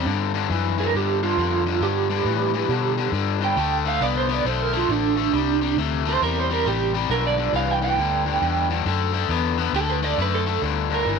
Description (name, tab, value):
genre	electric blues shuffle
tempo	136 BPM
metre	4/4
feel	swing 64% on 8ths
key	G mixolydian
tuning	A4 = 441 Hz
part	electric guitar at the edge of break-up	melody	0.0-11.2 s	D4 to G5	-24 LUFS	right 10 dB	tremolo
part	overdriven semi-hollow guitar	riff	0.0-11.2 s	G2 to B3	-24 LUFS	left 14 dB	none
part	vintage muted fingered electric bass	bass	0.0-11.2 s	G1 to B2	-26 LUFS	equal	transformer saturation
room	moderate plate reverb, RT60 3.2 s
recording	1960s-style stereo with parts hard left and right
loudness	-20 LUFS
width	side -5 dB against mid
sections	0.0-10.6 A section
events	clean electric guitar solo 0.0-10.6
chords	0.1 G; 3.6 D5; 5.3 C; 7.1 G; 8.9 D; 10.6 G5